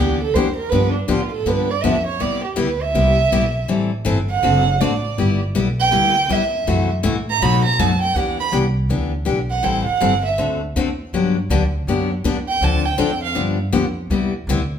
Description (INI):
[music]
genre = acoustic string swing (jazz manouche)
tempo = 161 BPM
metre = 4/4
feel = swing 62% on 8ths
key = G major, E minor from 8.2 s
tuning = A4 = 436 Hz
[part]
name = warm violin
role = second line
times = 0.0-13.4 s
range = D4 to B5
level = -20 LUFS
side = right 5 dB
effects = none
[part]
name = picked steel-string acoustic guitar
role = accompaniment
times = 0.0-14.6 s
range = B2 to A4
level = -20 LUFS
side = left 5 dB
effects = none
[part]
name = upright bass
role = bass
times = 0.0-14.8 s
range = F#1 to B2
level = -22 LUFS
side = equal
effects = none
[sound]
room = wet large studio reverb, RT60 0.9 s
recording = band playing live in one room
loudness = -16 LUFS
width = side -8 dB against mid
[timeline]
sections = 0.0-8.2 A section; 8.2-14.8 A section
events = violin solo 0.0-14.8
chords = 0.0 Em7; 0.7 G7; 2.2 Cmaj7; 3.7 Am7; 4.4 D7; 5.2 G6; 6.7 F#m7b5; 7.4 B7; 8.2 Em7; 9.6 Am7; 10.4 D7; 11.1 Gmaj7; 12.6 Dm7; 13.4 G7; 14.1 Cmaj7